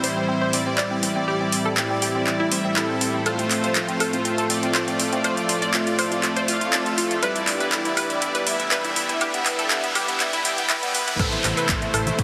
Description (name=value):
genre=progressive house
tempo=121 BPM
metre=4/4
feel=straight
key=unclear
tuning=A4 = 439 Hz
part: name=warm analog pad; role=sustained chords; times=0.0-12.2 s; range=A2 to E5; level=-31 LUFS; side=equal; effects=chorus, sidechain pumping
part: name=unison pluck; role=arpeggios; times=0.0-12.2 s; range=A3 to D5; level=-29 LUFS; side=equal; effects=sidechain pumping, tape echo
part: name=soft supersaw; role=stabs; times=0.0-12.2 s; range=G3 to G5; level=-28 LUFS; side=equal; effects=sidechain pumping, tape echo
part: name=deep house drum kit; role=drums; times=0.0-12.2 s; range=handclaps, hi-hat, shaker, woodblock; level=-27 LUFS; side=equal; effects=overdrive, sidechain pumping on hats, sidechain pumping on perc
part: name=riser and downlifter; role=sound effects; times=8.3-12.2 s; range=none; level=-34 LUFS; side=equal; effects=none
part: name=plucky analog bass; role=bass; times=11.2-12.2 s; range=A1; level=-32 LUFS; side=equal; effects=sidechain pumping
part: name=electronic kick drum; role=drums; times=11.2-12.2 s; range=none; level=-28 LUFS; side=equal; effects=overdrive
part: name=congas and woodblock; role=percussion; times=11.3-12.2 s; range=none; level=-34 LUFS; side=equal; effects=sidechain pumping on perc
room=wet huge ambient reverb, RT60 4.7 s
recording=dense, heavily limited modern master, high-pass filter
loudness=-22 LUFS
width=mono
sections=0.0-11.2 A section; 11.2-12.2 B section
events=build-up 0.0-11.2; filter sweep 0.0-11.2; drop 11.2-12.2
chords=0.0 C/A; 3.3 F/A; 7.2 Em7/A; 11.2 Am